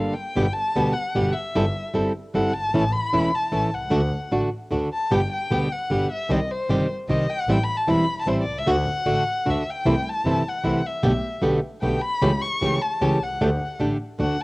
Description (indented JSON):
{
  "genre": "tango",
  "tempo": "152 BPM",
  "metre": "3/4",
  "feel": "rubato",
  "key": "G major",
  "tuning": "A4 = 440 Hz",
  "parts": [
    { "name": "warm violin", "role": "second line", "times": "0.0-14.4 s", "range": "C5 to C#6", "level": "-26 LUFS", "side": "left 2 dB", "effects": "cassette tape, plate reverb" },
    { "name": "flamenco guitar", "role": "accompaniment", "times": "0.0-14.4 s", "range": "B2 to A4", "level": "-23 LUFS", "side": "right 1 dB", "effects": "cassette tape, plate reverb" },
    { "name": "clear double bass", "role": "bass", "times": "0.0-14.4 s", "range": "E1 to D2", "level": "-27 LUFS", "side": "equal", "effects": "none" },
    { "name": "dark studio string section", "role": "stabs", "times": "9.9-14.4 s", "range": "A3 to G4", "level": "-31 LUFS", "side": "equal", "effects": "none" }
  ],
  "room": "moderate studio ambience, RT60 0.5 s",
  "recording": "home recording on cassette",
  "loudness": "-20 LUFS",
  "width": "side -23 dB against mid",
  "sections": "0.4-14.4 A section",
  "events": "violin solo 0.4-14.4",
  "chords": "0.4 G; 1.6 C6/G; 2.7 A; 3.9 D; 5.1 G; 6.3 Cm; 7.5 Am7; 8.7 D; 9.8 C6; 11.0 Gadd9/B; 12.2 A7/C#; 13.4 Dsus4"
}